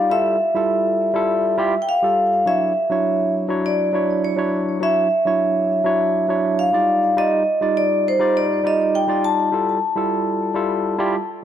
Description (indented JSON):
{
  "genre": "chillout",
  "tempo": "102 BPM",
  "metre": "4/4",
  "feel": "straight",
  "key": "unclear",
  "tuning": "A4 = 441 Hz",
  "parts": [
    { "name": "vibraphone with medium hard mallets", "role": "melody", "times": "0.0-11.3 s", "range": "C5 to A5", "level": "-18 LUFS", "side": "equal", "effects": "digital delay" },
    { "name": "barky tine electric piano", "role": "accompaniment", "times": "0.0-11.2 s", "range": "F#3 to D5", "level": "-21 LUFS", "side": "moving between left 3 dB and right 5 dB", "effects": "overdrive, auto-pan" }
  ],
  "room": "moderate lush hall reverb, RT60 2.2 s",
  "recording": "none",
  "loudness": "-17 LUFS",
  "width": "side -10 dB against mid",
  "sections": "0.0-11.4 A section",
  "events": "none",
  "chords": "0.1 Fmaj9; 2.5 Dmaj9; 6.9 Ebmaj9; 9.5 Fmaj9"
}